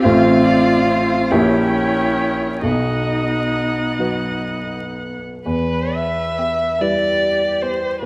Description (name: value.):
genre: classical, slow romantic movement for piano quintet.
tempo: 38-50 BPM (dotted quarters).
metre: 6/8.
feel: rubato.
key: unclear.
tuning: A4 = 439 Hz.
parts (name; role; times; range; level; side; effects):
muted violin; melody; 0.0-8.1 s; B4 to G5; -25 LUFS; equal; none.
muted cello; second line; 0.0-8.1 s; D#4 to B4; -25 LUFS; equal; none.
muted violin; second line; 0.0-7.9 s; G4 to F5; -28 LUFS; equal; none.
muted viola; accompaniment; 0.0-7.9 s; B3 to C#4; -27 LUFS; equal; none.
warm grand piano; accompaniment; 0.0-8.1 s; A1 to C#5; -22 LUFS; equal; none.
room: wet recital hall reverb, RT60 1.4 s.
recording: vinyl crackle.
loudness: -18 LUFS.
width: mono.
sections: 0.0-5.5 A section; 5.5-8.1 B section.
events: none.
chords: 0.0 F/A; 1.3 A#dim7; 2.6 B; 5.5 Em.